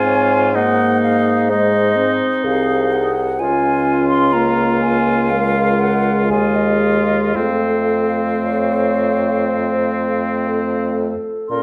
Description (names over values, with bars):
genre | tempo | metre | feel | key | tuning
classical, slow romantic movement for wind quintet | 56-65 BPM | 4/4 | rubato | unclear | A4 = 440 Hz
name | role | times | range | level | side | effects
mellow hollow silver concert flute | melody | 0.0-11.6 s | Eb5 to C6 | -24 LUFS | equal | none
warm oboe | second line | 0.0-11.6 s | C4 to Bb4 | -24 LUFS | equal | none
dark clarinet | accompaniment | 0.0-11.6 s | F4 to Eb5 | -24 LUFS | equal | none
mellow French horn | accompaniment | 0.0-11.6 s | Ab3 to Db4 | -23 LUFS | equal | none
warm bassoon | bass | 0.0-11.6 s | C2 to Bb2 | -23 LUFS | equal | none
room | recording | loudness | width
wet recital hall reverb, RT60 1.3 s | none | -17 LUFS | mono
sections
0.0-11.6 A section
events
none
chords
0.0 Ab; 3.4 Db; 7.3 F